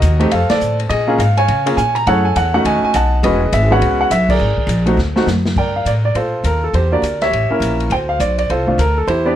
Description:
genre	jazz piano trio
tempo	206 BPM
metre	4/4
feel	swing 62% on 8ths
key	G minor from 5.6 s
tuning	A4 = 439 Hz
part	warm baby grand piano	melody	0.0-9.4 s	G#3 to Bb5	-15 LUFS	right 1 dB	none
part	upright bass	bass	0.0-9.4 s	E1 to Db3	-17 LUFS	equal	none
part	open jazz drum kit	drums	0.0-9.2 s	crash cymbal, hi-hat, kick drum, ride cymbal, snare drum	-25 LUFS	left 2 dB	none
room	light reverb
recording	none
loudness	-13 LUFS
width	side -11 dB against mid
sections	0.0-5.6 A section; 5.6-9.4 B section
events	band accent 0.5, 4.3; drum fill 5.0-5.6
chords	0.3 F; 0.9 Bbm7; 2.1 Gbm7; 2.6 B7; 3.2 E6; 4.4 Absus2; 5.0 D; 5.6 Gm9; 6.7 Em7b5; 7.3 A7b9; 7.9 Dm7

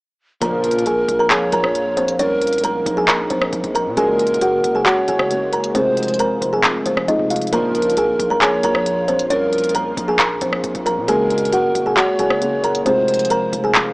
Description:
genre	hip hop, trap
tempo	135 BPM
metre	4/4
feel	half-time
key	Bb minor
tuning	A4 = 444 Hz
part	kalimba	melody	0.4-13.7 s	C4 to Bb5	-19 LUFS	equal	none
part	mellow hollow polished pan flute	second line	0.4-13.7 s	Bb4 to Db5	-21 LUFS	equal	tape echo
part	dark concert grand piano	accompaniment	0.4-13.9 s	Bb2 to Bb4	-26 LUFS	left 1 dB	none
part	sweeping resonant pad	sustained chords	1.0-13.9 s	Bb2 to Gb4	-29 LUFS	equal	chorus
part	analog synth brass	stabs	0.4-0.8, 4.0-4.4, 7.5-7.9, 11.1-11.5 s	Db2 to Ab3	-27 LUFS	equal	chorus, tape echo
part	distorted 808-style bass	bass	0.4-13.9 s	F1 to Bb2	-30 LUFS	equal	distortion
part	trap drum kit	drums	0.4-13.9 s	handclaps, hi-hat, rim click	-19 LUFS	equal	none
room	light reverb, studio reverb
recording	small speaker sound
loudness	-15 LUFS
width	side -24 dB against mid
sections	0.4-13.9 A section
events	none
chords	0.4 Bbm; 4.0 Gbadd9; 5.7 Fm; 7.5 Bbm; 11.1 Gbadd9; 12.9 Fm

